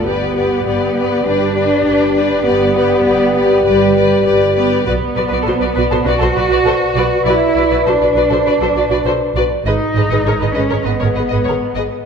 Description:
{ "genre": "cinematic", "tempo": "100 BPM", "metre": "4/4", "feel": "straight", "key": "unclear", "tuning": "A4 = 440 Hz", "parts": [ { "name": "muted chamber violin section", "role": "melody", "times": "0.0-11.8 s", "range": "C5 to D#5", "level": "-23 LUFS", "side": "left 4 dB", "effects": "none" }, { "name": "muted chamber violin section", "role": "second line", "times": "0.0-11.8 s", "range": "A4 to B4", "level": "-20 LUFS", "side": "left 2 dB", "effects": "none" }, { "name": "muted chamber viola section", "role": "accompaniment", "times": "0.0-11.8 s", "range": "F#4 to G#4", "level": "-21 LUFS", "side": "left 1 dB", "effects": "none" }, { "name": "mellow French horn section", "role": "sustained chords", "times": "0.0-12.0 s", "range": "G4 to D#5", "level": "-18 LUFS", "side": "left 2 dB", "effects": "none" }, { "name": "muted chamber cello section", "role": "bass", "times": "0.0-12.1 s", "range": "G3 to F#4", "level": "-18 LUFS", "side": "right 2 dB", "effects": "none" }, { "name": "muted chamber double bass section", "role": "bass", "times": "0.1-11.8 s", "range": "G1 to B1", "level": "-21 LUFS", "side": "right 3 dB", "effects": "none" } ], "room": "moderate concert hall reverb, RT60 1.9 s", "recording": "minimal, uncompressed stereo recording", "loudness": "-12 LUFS", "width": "side -6 dB against mid", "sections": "0.0-12.1 A section", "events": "none", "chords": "0.1 G; 4.9 Bm; 9.7 G#m", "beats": "| 0.07 0.67 1.26 1.86 | 2.46 3.06 3.67 4.26 | 4.87 5.46 6.07 6.67 | 7.26 7.87 8.46 9.06 | 9.66 10.27 10.87 11.46" }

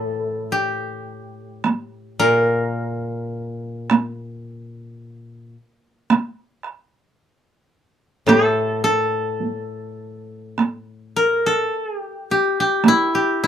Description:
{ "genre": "japanese traditional, Japanese chamber music", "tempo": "54 BPM", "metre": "2/4", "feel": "rubato", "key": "unclear", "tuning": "A4 = 440 Hz", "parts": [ { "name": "koto", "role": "melody", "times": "0.0-13.5 s", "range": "E4 to Bb4", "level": "-19 LUFS", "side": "left 1 dB", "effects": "none" }, { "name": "koto", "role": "accompaniment", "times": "0.0-11.6 s", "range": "A2 to Bb4", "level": "-25 LUFS", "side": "left 1 dB", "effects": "none" }, { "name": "taiko ensemble", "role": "percussion", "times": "1.6-13.1 s", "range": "none", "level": "-17 LUFS", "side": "right 4 dB", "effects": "none" } ], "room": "light reverb", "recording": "close, detailed microphones", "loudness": "-18 LUFS", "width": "side -9 dB against mid", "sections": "0.0-10.6 A section; 10.6-13.5 B section", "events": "none", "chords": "none", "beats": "0.50 | 1.64 2.79 | 3.91 5.00 | 6.09 7.19 | 8.29 9.42 | 10.58 11.72 | 12.84" }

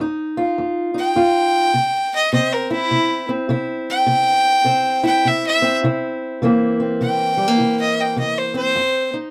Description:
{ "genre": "acoustic country blues, solo or duo", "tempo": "103 BPM", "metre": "4/4", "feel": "swing 63% on 8ths", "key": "C mixolydian", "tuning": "A4 = 440 Hz", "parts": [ { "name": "fingerpicked steel-string acoustic guitar", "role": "accompaniment", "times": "0.0-9.3 s", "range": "F2 to F4", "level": "-22 LUFS", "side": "equal", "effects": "none" }, { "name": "clear fiddle", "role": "melody", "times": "1.0-9.1 s", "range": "E4 to G5", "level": "-20 LUFS", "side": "equal", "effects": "none" } ], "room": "little or no reverb", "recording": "dry, close 1970s-style studio recording", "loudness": "-18 LUFS", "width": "mono", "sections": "0.0-6.4 A section; 6.4-9.3 B section", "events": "fiddle solo 0.0-6.4", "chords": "0.0 Ebadd9/F; 1.7 C; 6.4 C7; 8.8 F7(no3)", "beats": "0.57 1.16 | 1.74 2.32 2.91 3.49 | 4.08 4.66 5.24 5.83 | 6.42 7.00 7.59 8.18 | 8.76" }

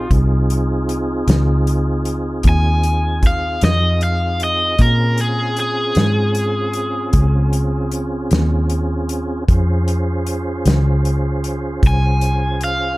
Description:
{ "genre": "slow blues", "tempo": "51 BPM (dotted quarters)", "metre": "12/8", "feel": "straight", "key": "unclear", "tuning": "A4 = 440 Hz", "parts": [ { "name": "cranked stack guitar", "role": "melody", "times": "0.0-13.0 s", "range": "F4 to Ab5", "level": "-20 LUFS", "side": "equal", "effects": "overdrive" }, { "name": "tonewheel organ", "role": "sustained chords", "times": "0.0-13.0 s", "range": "C4 to C5", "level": "-24 LUFS", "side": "right 1 dB", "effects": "chorus vibrato, stopped rotary speaker" }, { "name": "vintage muted fingered electric bass", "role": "bass", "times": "0.0-13.0 s", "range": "C2 to Bb2", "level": "-17 LUFS", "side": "equal", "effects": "none" }, { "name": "natural country drum kit", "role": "drums", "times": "0.1-12.8 s", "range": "hi-hat, kick drum, snare drum", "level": "-18 LUFS", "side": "equal", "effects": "none" } ], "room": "little or no reverb", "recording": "dark, warm production", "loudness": "-15 LUFS", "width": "side -20 dB against mid", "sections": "0.0-13.0 A section", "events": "none", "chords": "0.0 Fm7; 4.8 Bbm7", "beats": "| 0.11 1.28 2.46 3.63 | 4.80 5.97 7.14 8.32 | 9.49 10.66 11.84" }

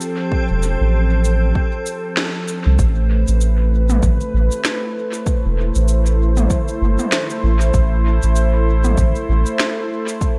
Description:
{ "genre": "ambient dub", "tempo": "97 BPM", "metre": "4/4", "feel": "swing 58% on 16ths", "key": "A minor", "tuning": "A4 = 444 Hz", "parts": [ { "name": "warm analog pad", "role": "sustained chords", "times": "0.0-10.4 s", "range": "F3 to C5", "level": "-25 LUFS", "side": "equal", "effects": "chorus" }, { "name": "organic electronic drum kit", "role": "drums", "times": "0.0-10.4 s", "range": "shaker, snare drum, toms", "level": "-26 LUFS", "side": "equal", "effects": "dub echo" }, { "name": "backwards swelling texture", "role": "texture", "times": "0.0-2.8 s", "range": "C4 to C5", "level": "-32 LUFS", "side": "equal", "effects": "built-in reverb" }, { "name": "electronic kick drum", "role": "drums", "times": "0.3-10.4 s", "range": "none", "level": "-22 LUFS", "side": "equal", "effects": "none" }, { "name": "soft dub sub bass", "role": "bass", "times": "0.5-9.4 s", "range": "E1 to C2", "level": "-17 LUFS", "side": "equal", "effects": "none" } ], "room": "digital ambience", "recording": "none", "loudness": "-17 LUFS", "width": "mono", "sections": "0.0-2.8 A section; 2.8-10.4 B section", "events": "band accent 2.2-2.5", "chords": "0.0 F; 2.8 Am9", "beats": "| 0.32 0.94 1.55 2.17 | 2.79 3.41 4.03 4.65 | 5.26 5.88 6.50 7.12 | 7.74 8.36 8.98 9.60 | 10.21" }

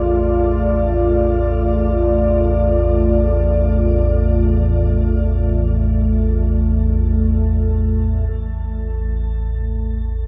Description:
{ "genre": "dark ambient drone", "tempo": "free time", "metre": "none", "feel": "none", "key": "unclear", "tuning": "A4 = 440 Hz", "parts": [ { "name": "deep dark ambient pad", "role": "sustained chords", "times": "0.0-10.3 s", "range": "A3 to D5", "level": "-22 LUFS", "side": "equal", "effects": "chorus, built-in reverb, shimmer reverb" }, { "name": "deep rumbling drone", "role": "drone", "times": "0.0-10.3 s", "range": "A1 to E2", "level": "-19 LUFS", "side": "equal", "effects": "built-in reverb" }, { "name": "bronze singing bowl", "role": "texture", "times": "0.0-10.3 s", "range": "G#4 to A4", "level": "-42 LUFS", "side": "equal", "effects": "none" } ], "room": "wet huge ambient reverb, RT60 8.5 s", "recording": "dark, warm production", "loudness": "-17 LUFS", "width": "mono", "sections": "0.0-8.3 A section; 8.3-10.3 B section", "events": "none", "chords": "0.0 Dm/A; 8.3 A5", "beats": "free time" }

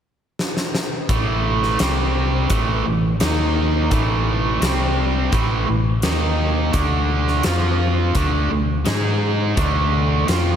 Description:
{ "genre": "classic rock", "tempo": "85 BPM", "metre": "4/4", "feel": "straight", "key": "unclear", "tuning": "A4 = 438 Hz", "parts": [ { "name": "huge arena drum kit", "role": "drums", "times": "0.4-10.4 s", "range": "hi-hat, kick drum, snare drum", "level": "-24 LUFS", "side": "left 1 dB", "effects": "none" }, { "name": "biting overdriven guitar", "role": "riff", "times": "1.1-10.6 s", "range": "A2 to G#4", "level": "-22 LUFS", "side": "right 8 dB", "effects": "spring reverb" }, { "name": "distorted electric guitar", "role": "riff", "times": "1.1-10.6 s", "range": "A2 to G#4", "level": "-24 LUFS", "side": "left 8 dB", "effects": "distortion, slapback echo" }, { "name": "fingered electric bass", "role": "bass", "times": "1.1-10.6 s", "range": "A1 to G#2", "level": "-21 LUFS", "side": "equal", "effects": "none" } ], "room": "moderate lush hall reverb, RT60 3.0 s", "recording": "big arena sound", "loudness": "-17 LUFS", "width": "side -8 dB against mid", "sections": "0.0-1.1 A section; 1.1-10.6 B section", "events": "drum fill 0.4-1.1", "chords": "0.0 N.C.; 1.1 A5; 1.8 C5; 2.5 A5; 3.2 D#5; 3.9 A5; 4.6 C5; 5.3 A5; 6.0 D#5; 6.7 D5; 7.5 F5; 8.2 D5; 8.9 G#5; 9.6 D5", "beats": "0.38 | 1.09 1.80 2.50 3.21 | 3.92 4.63 5.33 6.04 | 6.75 7.45 8.16 8.87 | 9.57 10.28" }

